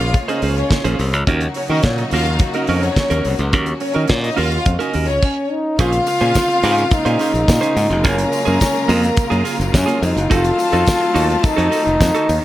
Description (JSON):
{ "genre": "disco", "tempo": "106 BPM", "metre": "4/4", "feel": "straight", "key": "Bb minor", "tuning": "A4 = 442 Hz", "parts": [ { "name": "rich studio string section", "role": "second line", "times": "0.0-12.2 s", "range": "Db4 to Bb5", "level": "-23 LUFS", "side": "left 2 dB", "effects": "none" }, { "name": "clean electric guitar", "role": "accompaniment", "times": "0.0-12.3 s", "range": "Bb3 to C5", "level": "-23 LUFS", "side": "right 5 dB", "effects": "none" }, { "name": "clear studio string section", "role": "sustained chords", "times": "0.0-12.4 s", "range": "Db3 to Db5", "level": "-26 LUFS", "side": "left 1 dB", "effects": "none" }, { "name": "modern bright fingered electric bass", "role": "bass", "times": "0.0-12.4 s", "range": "F1 to Eb3", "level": "-19 LUFS", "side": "equal", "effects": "none" }, { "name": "damped 70s drum kit", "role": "drums", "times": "0.0-12.4 s", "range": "crash cymbal, hi-hat, kick drum, snare drum", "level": "-20 LUFS", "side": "equal", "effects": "none" }, { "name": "breathy trombone", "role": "melody", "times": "5.2-12.4 s", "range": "Bb3 to F4", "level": "-18 LUFS", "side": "left 1 dB", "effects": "none" }, { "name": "tambourine", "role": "percussion", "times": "5.8-12.4 s", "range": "none", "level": "-34 LUFS", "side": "left 6 dB", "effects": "none" } ], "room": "light reverb, small room ambience", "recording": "none", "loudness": "-14 LUFS", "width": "side -14 dB against mid", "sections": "0.0-5.8 A section; 5.8-12.4 B section", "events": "none", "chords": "0.0 Bbm9; 1.3 Ebm7; 5.8 Bbm9; 8.0 Gbmaj9; 10.3 F7b9", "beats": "0.14 0.70 | 1.27 1.84 2.40 2.97 | 3.53 4.10 4.66 5.23 | 5.79 6.36 6.92 7.48 | 8.05 8.61 9.18 9.74 | 10.31 10.87 11.44 12.00" }